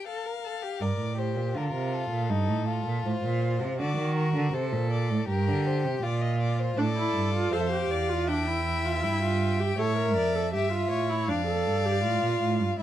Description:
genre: classical, baroque-style fugue for string quartet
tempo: 80 BPM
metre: 4/4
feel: straight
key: unclear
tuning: A4 = 440 Hz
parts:
  - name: rich violin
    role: melody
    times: 0.0-12.8 s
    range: A4 to G5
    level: -33 LUFS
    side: left 8 dB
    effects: none
  - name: rich violin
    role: second line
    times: 0.0-12.8 s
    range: Eb4 to E5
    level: -33 LUFS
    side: left 3 dB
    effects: none
  - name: rich cello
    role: bass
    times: 0.8-12.8 s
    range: E2 to Eb3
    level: -28 LUFS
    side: right 3 dB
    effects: none
  - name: rich viola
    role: accompaniment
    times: 6.8-12.8 s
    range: D4 to Bb4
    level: -28 LUFS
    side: right 2 dB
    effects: none
room: light reverb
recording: dark, warm production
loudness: -25 LUFS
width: side -12 dB against mid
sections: 0.0-12.8 A section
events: none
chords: 0.0 Dm (rootless); 0.8 Gm; 2.3 Am7b5/G; 3.8 D7; 5.3 Gm; 6.8 Dm; 8.3 Em7; 9.8 A7; 11.3 Dm/F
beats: 0.07 | 0.81 1.56 2.30 3.05 | 3.79 4.54 5.29 6.03 | 6.78 7.54 8.29 9.04 | 9.79 10.54 11.29 12.04 | 12.80

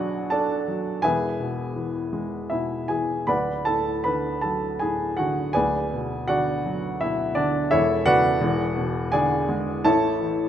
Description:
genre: classical, lyrical solo piano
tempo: 82 BPM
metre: 3/4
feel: uneven beats, rubato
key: unclear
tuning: A4 = 439 Hz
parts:
  - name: warm upright piano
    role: solo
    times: 0.0-10.5 s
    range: D1 to B5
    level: -21 LUFS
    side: equal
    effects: none
room: moderate recital hall reverb, RT60 1.6 s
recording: minimal, uncompressed stereo recording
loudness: -21 LUFS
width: side -10 dB against mid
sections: 0.0-10.5 A section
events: none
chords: 0.0 Bm; 1.0 E; 3.3 D; 5.5 Bm/D; 7.7 A/E; 8.4 E7; 9.8 A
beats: 0.31 | 1.04 1.76 2.51 | 3.29 4.05 4.81 | 5.55 6.28 7.00 | 7.70 8.40 9.11 | 9.84

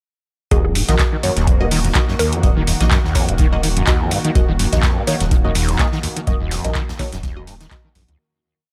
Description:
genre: acid house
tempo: 125 BPM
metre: 4/4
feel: swing 55% on 16ths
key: Eb minor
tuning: A4 = 440 Hz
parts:
  - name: hollow square pluck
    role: melody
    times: 0.5-2.7 s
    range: Ab4 to Bb4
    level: -28 LUFS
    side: equal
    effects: chorus, digital delay
  - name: lush unison pad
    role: sustained chords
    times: 0.7-8.2 s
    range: Eb3 to Gb4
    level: -29 LUFS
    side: equal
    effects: chorus, phaser, sidechain pumping
  - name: overdriven acid bass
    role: riff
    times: 0.5-8.2 s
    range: Eb2 to Eb3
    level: -24 LUFS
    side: equal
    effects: ensemble chorus, digital delay
  - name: filtered dub chord stab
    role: stabs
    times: 0.5-7.8 s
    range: Bb3 to Eb5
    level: -29 LUFS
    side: equal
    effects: phaser, digital delay
  - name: saturated sub bass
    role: bass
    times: 0.5-8.2 s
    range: Eb1 to Db2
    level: -23 LUFS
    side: equal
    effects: sidechain pumping
  - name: electro analog drum machine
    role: drums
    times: 0.5-8.2 s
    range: handclaps, hi-hat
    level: -25 LUFS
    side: equal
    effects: small room ambience
  - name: electronic kick drum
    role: drums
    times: 0.5-7.8 s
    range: none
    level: -20 LUFS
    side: equal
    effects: small room ambience
  - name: tight funk drum kit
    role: drums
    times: 0.5-8.1 s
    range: hi-hat, snare drum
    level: -36 LUFS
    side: equal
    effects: none
room: digital ambience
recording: none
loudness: -17 LUFS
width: mono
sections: 0.5-8.2 groove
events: fade-out 5.6-8.2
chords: 0.5 Ebm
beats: | 0.51 0.99 1.47 1.95 | 2.43 2.91 3.39 3.87 | 4.35 4.83 5.31 5.79 | 6.27 6.75 7.23 7.71

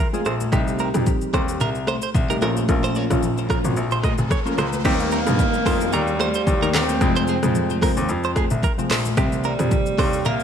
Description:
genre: afrobeats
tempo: 111 BPM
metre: 4/4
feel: swing 55% on 16ths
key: F minor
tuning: A4 = 442 Hz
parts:
  - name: direct-recorded clean electric guitar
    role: riff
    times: 0.0-10.3 s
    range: G4 to Eb5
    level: -28 LUFS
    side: right 5 dB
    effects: phaser, ping-pong delay
  - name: warm analog keys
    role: accompaniment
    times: 0.1-10.2 s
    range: C3 to Ab4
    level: -26 LUFS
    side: left 1 dB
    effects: chorus
  - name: deep house drum kit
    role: drums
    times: 0.1-10.4 s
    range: crash cymbal, handclaps, hi-hat, kick drum, rim click, shaker, toms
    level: -23 LUFS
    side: equal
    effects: overdrive
  - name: congas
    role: percussion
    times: 0.1-10.0 s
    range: none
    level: -31 LUFS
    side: left 3 dB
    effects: none
  - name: warm baby grand piano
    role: bass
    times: 0.3-10.4 s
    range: F1 to G2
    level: -24 LUFS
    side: left 1 dB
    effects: none
  - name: riser and downlifter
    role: sound effects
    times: 3.3-9.2 s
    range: none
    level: -32 LUFS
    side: equal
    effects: none
  - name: breathy alto saxophone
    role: melody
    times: 4.9-10.4 s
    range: G3 to C4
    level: -25 LUFS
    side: right 1 dB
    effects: ping-pong delay
room: moderate plate reverb, RT60 2.4 s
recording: dreamy mix soaked in reverb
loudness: -18 LUFS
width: side -8 dB against mid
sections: 0.0-4.8 A section; 4.8-10.4 B section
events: riser 3.3-4.8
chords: 0.0 Fm; 0.5 Cm; 2.4 Bbm; 4.8 Eb; 7.0 Fm; 9.2 Cm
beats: | 0.53 1.06 1.61 2.15 | 2.69 3.23 3.77 4.31 | 4.85 5.39 5.93 6.47 | 7.01 7.55 8.09 8.63 | 9.17 9.71 10.26

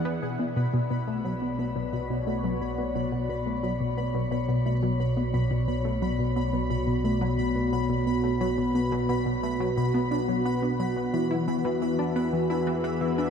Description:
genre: ambient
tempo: 88 BPM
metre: 4/4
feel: straight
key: B dorian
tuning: A4 = 440 Hz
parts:
  - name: sweeping resonant pad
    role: sustained chords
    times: 0.0-13.3 s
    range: B2 to E5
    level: -27 LUFS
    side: left 1 dB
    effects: chorus, shimmer reverb
  - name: fat analog bass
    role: bass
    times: 0.0-13.3 s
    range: B1 to E2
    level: -35 LUFS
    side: equal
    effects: tube saturation
  - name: pulsing gated texture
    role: texture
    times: 0.0-13.3 s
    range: F#5 to B5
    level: -37 LUFS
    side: left 2 dB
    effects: chorus, built-in reverb, shimmer reverb
  - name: tight sequenced synth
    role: riff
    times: 0.1-13.3 s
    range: B2 to E4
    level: -29 LUFS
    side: equal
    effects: chorus, analog delay, shimmer reverb
room: wet huge ambient reverb, RT60 7.6 s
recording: in a vast, echoing space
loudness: -24 LUFS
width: side -7 dB against mid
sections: 0.0-13.3 A section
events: none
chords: 0.2 Bmadd9; 11.1 Eadd9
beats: | 0.23 0.91 1.59 2.27 | 2.95 3.63 4.32 5.00 | 5.68 6.36 7.04 7.73 | 8.41 9.09 9.77 10.45 | 11.13 11.82 12.50 13.18

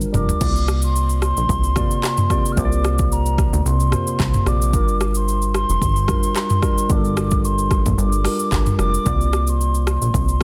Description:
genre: afrobeats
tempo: 111 BPM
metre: 4/4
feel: swing 55% on 16ths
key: unclear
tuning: A4 = 445 Hz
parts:
  - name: hollow clarinet-like synth lead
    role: melody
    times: 0.0-10.4 s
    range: Bb4 to F6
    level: -27 LUFS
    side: equal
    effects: chorus, digital delay
  - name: tine electric piano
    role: accompaniment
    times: 0.0-10.4 s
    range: C3 to D5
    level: -27 LUFS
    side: equal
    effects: none
  - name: plucky analog bass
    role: bass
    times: 0.0-10.4 s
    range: F1 to D2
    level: -22 LUFS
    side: equal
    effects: none
  - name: afro-pop drum kit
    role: drums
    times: 0.0-10.4 s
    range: crash cymbal, handclaps, hi-hat, kick drum, rim click, shaker, toms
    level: -23 LUFS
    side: equal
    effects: soft clipping on snare
room: digital ambience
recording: dense, heavily limited modern master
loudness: -19 LUFS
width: mono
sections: 0.4-10.4 A section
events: drum fill 0.0-0.4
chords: 0.4 C9sus4; 4.7 Gm7; 9.1 C9sus4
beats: | 0.41 0.95 1.49 2.03 | 2.57 3.11 3.65 4.19 | 4.74 5.28 5.82 6.36 | 6.90 7.44 7.98 8.52 | 9.06 9.60 10.14

